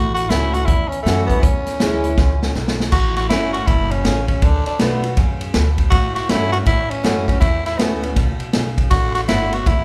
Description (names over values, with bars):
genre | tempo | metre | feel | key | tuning
rockabilly | 160 BPM | 4/4 | swing 64% on 8ths | A mixolydian | A4 = 440 Hz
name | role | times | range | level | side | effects
breathy tenor saxophone | melody | 0.0-9.8 s | A3 to F#4 | -24 LUFS | equal | none
picked old ladder-braced acoustic guitar | accompaniment | 0.0-9.8 s | E2 to F#4 | -27 LUFS | equal | none
upright bass | bass | 0.0-9.8 s | F#1 to A2 | -25 LUFS | equal | none
vintage drum kit | drums | 0.2-9.8 s | crash cymbal, hi-hat, kick drum, ride cymbal, snare drum | -21 LUFS | equal | none
room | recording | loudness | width
moderate large studio reverb, RT60 1.2 s | band playing live in one room | -18 LUFS | mono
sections
0.0-2.9 A section; 2.9-9.8 A section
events
drum fill 2.2-2.9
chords
0.0 A6; 1.4 E6; 2.9 A6; 4.4 D6; 5.9 A6; 8.9 D6